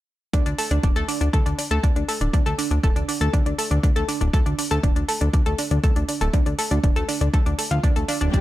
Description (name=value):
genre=melodic techno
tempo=120 BPM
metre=4/4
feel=straight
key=unclear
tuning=A4 = 440 Hz
part: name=analog pluck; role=arpeggios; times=0.3-8.4 s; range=D4 to A4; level=-26 LUFS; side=right 1 dB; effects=chorus, sidechain pumping, digital delay
part: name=fat analog bass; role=bass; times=0.3-8.4 s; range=D1 to D2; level=-23 LUFS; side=equal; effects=sidechain pumping
part: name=electronic hi-hat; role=drums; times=0.3-8.4 s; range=none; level=-30 LUFS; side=left 1 dB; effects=overdrive
part: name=electronic kick drum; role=drums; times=0.3-8.4 s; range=none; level=-20 LUFS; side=equal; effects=overdrive
part: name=dark studio string section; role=sustained chords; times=8.3-8.4 s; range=D3 to G4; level=-27 LUFS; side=left 2 dB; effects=sidechain pumping
room=little or no reverb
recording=none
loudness=-19 LUFS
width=side -15 dB against mid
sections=0.3-8.4 A section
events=none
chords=0.3 D5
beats=| 0.34 0.84 1.34 1.84 | 2.34 2.84 3.34 3.84 | 4.34 4.84 5.34 5.84 | 6.34 6.84 7.34 7.84 | 8.34